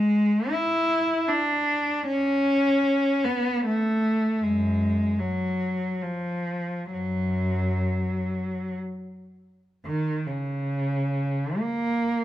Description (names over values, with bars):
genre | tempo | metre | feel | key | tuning
classical, free, expressive piece for unaccompanied cello | 48-80 BPM | 3/4 | rubato | F# minor | A4 = 440 Hz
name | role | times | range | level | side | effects
rich cello | solo | 0.0-12.2 s | F#2 to E4 | -23 LUFS | equal | none
room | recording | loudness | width
light reverb | close, detailed microphones | -23 LUFS | side -13 dB against mid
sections
0.0-9.9 A section; 9.9-12.2 B section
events
none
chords
none